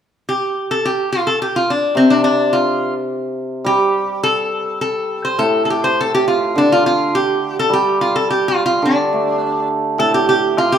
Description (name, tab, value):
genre	chinese traditional, Chinese chamber ensemble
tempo	104 BPM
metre	2/4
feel	rubato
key	D yu mode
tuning	A4 = 440 Hz
part	lap resonator guitar	melody	0.3-10.8 s	C4 to C5	-15 LUFS	equal	none
part	hammered dulcimer	accompaniment	1.9-10.8 s	A2 to A3	-20 LUFS	right 2 dB	none
part	woodblock	percussion	10.0-10.7 s	none	-27 LUFS	left 2 dB	none
room	moderate recital hall reverb, RT60 1.6 s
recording	close, detailed microphones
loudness	-14 LUFS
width	side -8 dB against mid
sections	0.8-10.0 A section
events	none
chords	none